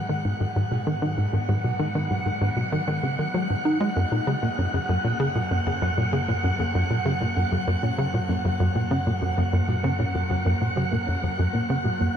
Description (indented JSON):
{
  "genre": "ambient, sequencer-driven space music",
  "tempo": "97 BPM",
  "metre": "4/4",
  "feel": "straight",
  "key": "unclear",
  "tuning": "A4 = 440 Hz",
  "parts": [
    { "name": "thumb-piano-like synth pluck", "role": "arpeggios", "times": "0.0-12.1 s", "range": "F#3 to C#4", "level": "-32 LUFS", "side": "moving between left 3 dB and right 5 dB", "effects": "chorus, auto-pan, ping-pong delay" },
    { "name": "tight sequencer bass", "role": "riff", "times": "0.0-12.1 s", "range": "F#2 to D#4", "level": "-24 LUFS", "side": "equal", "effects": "analog chorus, ping-pong delay" },
    { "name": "analog drone", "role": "bass", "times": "0.0-12.2 s", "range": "F#2 to G#2", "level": "-32 LUFS", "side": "equal", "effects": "none" },
    { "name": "wind-like tuned noise texture", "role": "texture", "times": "0.0-12.2 s", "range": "F#5", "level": "-30 LUFS", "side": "right 1 dB", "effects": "built-in reverb" }
  ],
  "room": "moderate shimmer reverb, RT60 7.4 s",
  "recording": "none",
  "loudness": "-22 LUFS",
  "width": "side -8 dB against mid",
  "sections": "0.0-12.2 A section",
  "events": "fade-in on synth arpeggio sound 0.0-12.2",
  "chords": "0.0 G#m7; 4.0 F#",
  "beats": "0.25 0.87 | 1.49 2.11 2.73 3.34 | 3.96 4.58 5.20 5.82 | 6.44 7.05 7.67 8.29 | 8.91 9.53 10.15 10.77 | 11.38 12.00"
}